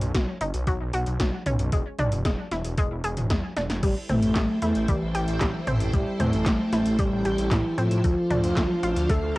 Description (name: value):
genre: synthwave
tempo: 114 BPM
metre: 4/4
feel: straight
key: A minor from 3.8 s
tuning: A4 = 440 Hz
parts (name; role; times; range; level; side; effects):
- analog pluck; arpeggios; 0.0-9.4 s; F#3 to G#4; -31 LUFS; left 1 dB; chorus, cassette tape, tape echo
- wide detuned saw bass; bass; 0.0-9.4 s; E1 to A2; -28 LUFS; equal; chorus, sidechain pumping
- 80s electronic pad drums; drums; 0.0-9.4 s; crash cymbal, handclaps, hi-hat, snare drum, toms; -29 LUFS; equal; gated reverb on snare and toms, cassette tape
- electronic kick drum; drums; 0.1-9.2 s; none; -26 LUFS; equal; overdrive, cassette tape
- expressive synth lead; melody; 3.8-9.4 s; E3 to A3; -25 LUFS; equal; chorus, cassette tape, tape echo
- FM electric piano with soft pad layer; second line; 3.8-9.4 s; E3 to A3; -35 LUFS; left 1 dB; none
- string machine, full ensemble; sustained chords; 3.8-9.4 s; D4 to G5; -35 LUFS; right 1 dB; ensemble chorus, sidechain pumping, cassette tape
room: light reverb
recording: home recording on cassette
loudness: -22 LUFS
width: side -20 dB against mid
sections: 0.0-3.8 A section; 3.8-9.4 B section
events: drum fill 3.6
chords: 0.0 Badd9; 1.7 E7; 3.8 Am7; 8.0 Dm7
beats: 0.15 0.67 1.20 | 1.73 2.25 2.78 3.31 | 3.83 4.36 4.88 5.41 | 5.94 6.46 6.99 7.51 | 8.04 8.57 9.09